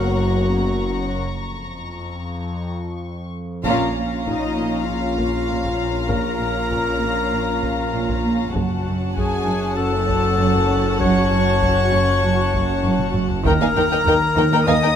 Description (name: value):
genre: cinematic, suspense film score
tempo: 98 BPM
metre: 4/4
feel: straight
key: Bb minor from 3.6 s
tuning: A4 = 439 Hz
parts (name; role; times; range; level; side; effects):
- warm symphonic violin section; melody; 0.0-15.0 s; Eb5 to Eb6; -28 LUFS; left 2 dB; none
- warm clarinet; second line; 0.0-15.0 s; Eb4 to Eb5; -23 LUFS; left 4 dB; none
- warm symphonic violin section; second line; 0.0-14.9 s; C#5 to Bb5; -27 LUFS; left 2 dB; none
- dark studio viola section; accompaniment; 0.0-14.9 s; A#3 to Bb4; -26 LUFS; equal; none
- rich symphonic double bass section; bass; 0.0-14.7 s; F#1 to Eb2; -28 LUFS; right 3 dB; none
- warm symphonic cello section; bass; 0.0-14.9 s; Eb2 to Bb2; -27 LUFS; right 1 dB; none
- analog drone; drone; 0.0-15.0 s; F#1 to E#2; -26 LUFS; left 1 dB; chorus
- dark studio violin section; texture; 0.0-3.3 s; A#5 to C#6; -33 LUFS; left 4 dB; none
- taiko ensemble; drums; 3.6-14.6 s; none; -28 LUFS; equal; none
- rich symphonic cello section; riff; 3.7-14.9 s; Gb2 to Bb3; -25 LUFS; right 4 dB; none
room: light reverb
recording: close, detailed microphones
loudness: -17 LUFS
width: side -8 dB against mid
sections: 0.0-3.6 A section; 3.6-15.0 B section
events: break 1.2-3.6; band accent 3.6-4.3; drum fill 12.8-13.4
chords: 0.0 F#; 1.2 A#m/E#; 3.6 Bbm; 8.5 Gbm; 13.4 Eb